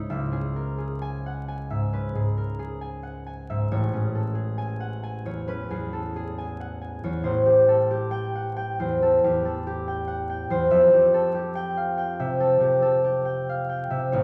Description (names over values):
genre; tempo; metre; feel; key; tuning
classical, solo harp piece; 68 BPM; 4/4; uneven beats, rubato; unclear; A4 = 440 Hz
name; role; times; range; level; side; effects
concert harp; solo; 0.0-14.2 s; A1 to G#5; -25 LUFS; equal; none
room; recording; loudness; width
wet recital hall reverb, RT60 1.3 s; heard from further back in the room, vinyl crackle; -25 LUFS; mono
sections
0.1-14.2 A section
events
none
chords
0.1 C#m7; 3.7 Amaj9; 7.3 Am7; 10.7 Fmaj9